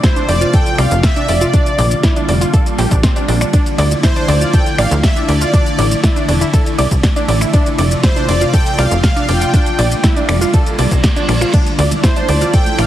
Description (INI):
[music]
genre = progressive house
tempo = 120 BPM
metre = 4/4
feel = straight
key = D minor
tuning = A4 = 439 Hz
[part]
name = soft supersaw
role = melody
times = 0.0-12.9 s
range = C5 to G5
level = -20 LUFS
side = right 1 dB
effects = tape echo
[part]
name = evolving wavetable pad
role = sustained chords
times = 0.0-12.9 s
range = C3 to F4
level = -21 LUFS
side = left 1 dB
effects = chorus, built-in reverb, sidechain pumping
[part]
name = wide unison pluck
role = arpeggios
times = 0.0-12.8 s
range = C4 to D6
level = -20 LUFS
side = right 1 dB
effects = sidechain pumping, tape echo
[part]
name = deep house drum kit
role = drums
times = 0.0-12.9 s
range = crash cymbal, finger snaps, hi-hat, ride cymbal, shaker, snare drum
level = -21 LUFS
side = equal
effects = overdrive
[part]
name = electronic kick drum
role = drums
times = 0.0-12.6 s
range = none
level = -13 LUFS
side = equal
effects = overdrive
[part]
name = tight sequencer bass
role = bass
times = 0.3-12.9 s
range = E1 to D2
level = -15 LUFS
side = equal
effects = sidechain pumping
[part]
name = reverse cymbal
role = sound effects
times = 10.7-11.5 s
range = none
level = -26 LUFS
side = right 3 dB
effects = none
[part]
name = congas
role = percussion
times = 11.5-12.8 s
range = none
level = -26 LUFS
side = right 4 dB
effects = sidechain pumping on perc
[part]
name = drifting glass-harmonics texture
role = texture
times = 11.9-12.9 s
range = A5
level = -31 LUFS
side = right 8 dB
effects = none
[sound]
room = light reverb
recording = heavily compressed radio sound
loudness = -11 LUFS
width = side -12 dB against mid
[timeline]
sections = 0.0-12.9 A section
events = reverse cymbal 10.7-11.5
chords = 0.0 F; 1.5 Bb6; 3.5 Dmadd9; 5.5 Asus4; 7.5 F; 9.5 Bb6; 11.5 Dmadd9